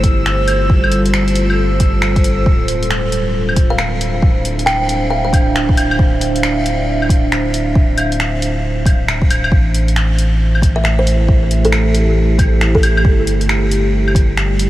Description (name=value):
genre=future garage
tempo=136 BPM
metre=4/4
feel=swing 64% on 16ths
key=D minor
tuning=A4 = 440 Hz
part: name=deep dark ambient pad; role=sustained chords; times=0.0-14.7 s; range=G3 to F5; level=-19 LUFS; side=right 1 dB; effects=chorus, built-in reverb, vintage 12-bit sampler grit, sidechain pumping
part: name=warm sub bass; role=bass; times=0.0-14.7 s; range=D1 to A1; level=-17 LUFS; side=equal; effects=sidechain pumping
part: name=deep house drum kit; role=drums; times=0.0-14.7 s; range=claves, finger snaps, hi-hat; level=-20 LUFS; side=equal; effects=none
part: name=electronic kick drum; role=drums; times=0.0-14.3 s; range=none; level=-13 LUFS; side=equal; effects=none
part: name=drifting glass-harmonics texture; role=texture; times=0.0-2.5 s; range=E6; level=-27 LUFS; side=equal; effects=chorus, built-in reverb
part: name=kalimba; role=melody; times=3.7-5.3, 10.8-13.1 s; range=A4 to G5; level=-22 LUFS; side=equal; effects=vintage 12-bit sampler grit, analog delay
room=moderate huge ambient reverb, RT60 7.4 s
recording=dreamy mix soaked in reverb, vinyl crackle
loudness=-12 LUFS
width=side -15 dB against mid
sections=0.0-2.5 A section; 2.5-14.7 A section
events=none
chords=0.0 G9sus4; 2.5 Dm9; 9.5 Am7; 13.0 G9sus4